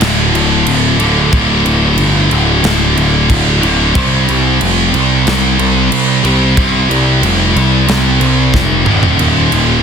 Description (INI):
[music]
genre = heavy metal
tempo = 91 BPM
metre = 4/4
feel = straight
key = unclear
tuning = A4 = 437 Hz
[part]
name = scooped high-gain guitar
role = riff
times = 0.0-9.8 s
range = D2 to C4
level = -12 LUFS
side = equal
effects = distortion
[part]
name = fuzz picked electric bass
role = bass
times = 0.0-9.8 s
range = D1 to C2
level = -14 LUFS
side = equal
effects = overdrive
[part]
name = modern studio drum kit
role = drums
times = 0.0-9.7 s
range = crash cymbal, kick drum, snare drum, toms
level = -17 LUFS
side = right 1 dB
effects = none
[sound]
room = little or no reverb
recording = dense, heavily limited modern master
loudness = -9 LUFS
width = side -7 dB against mid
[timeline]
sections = 0.0-9.8 A section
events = half time 0.0-9.8; drum fill 8.5-9.2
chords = 0.0 D5; 3.9 C5; 8.9 Eb5